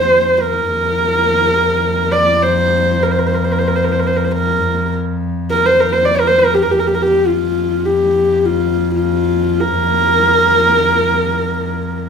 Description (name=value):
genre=mongolian traditional, Mongolian folk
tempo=free time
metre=none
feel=none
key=F zhi mode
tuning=A4 = 440 Hz
part: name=dark horsehead fiddle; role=melody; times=0.0-12.1 s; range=F4 to D5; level=-13 LUFS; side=equal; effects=none
part: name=warm cello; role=drone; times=0.0-12.1 s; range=F2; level=-19 LUFS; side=left 1 dB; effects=none
room=wet large studio reverb, RT60 0.8 s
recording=band playing live in one room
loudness=-12 LUFS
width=side -6 dB against mid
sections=0.0-12.1 A section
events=none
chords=none